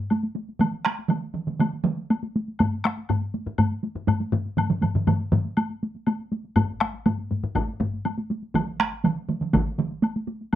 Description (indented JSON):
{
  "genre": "japanese traditional, taiko drum ensemble",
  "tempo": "121 BPM",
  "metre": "4/4",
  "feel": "straight",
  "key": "none",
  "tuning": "none",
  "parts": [
    { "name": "taiko ensemble", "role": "percussion", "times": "0.1-10.6 s", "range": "none", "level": "-25 LUFS", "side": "right 1 dB", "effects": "none" },
    { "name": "woodblock", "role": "percussion", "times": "0.1-10.6 s", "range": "none", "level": "-32 LUFS", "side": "left 5 dB", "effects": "none" },
    { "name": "taiko ensemble", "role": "percussion", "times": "0.6-5.4, 8.5-9.9 s", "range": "none", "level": "-25 LUFS", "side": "right 4 dB", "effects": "none" },
    { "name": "taiko ensemble", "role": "percussion", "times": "2.6-7.9 s", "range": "none", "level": "-25 LUFS", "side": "left 3 dB", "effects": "none" },
    { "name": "taiko ensemble", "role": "percussion", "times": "6.6-9.7 s", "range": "none", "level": "-31 LUFS", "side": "left 1 dB", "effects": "none" }
  ],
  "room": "wet studio reverb, RT60 0.5 s",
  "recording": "rough home demo mix, faint mains hum",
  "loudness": "-23 LUFS",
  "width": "side -12 dB against mid",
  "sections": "0.0-10.6 A section",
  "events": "none",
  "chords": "none",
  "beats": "0.10 | 0.60 1.10 1.60 2.09 | 2.59 3.09 3.59 4.08 | 4.58 5.08 5.57 6.07 | 6.57 7.06 7.56 8.05 | 8.55 9.05 9.54 10.04 | 10.53"
}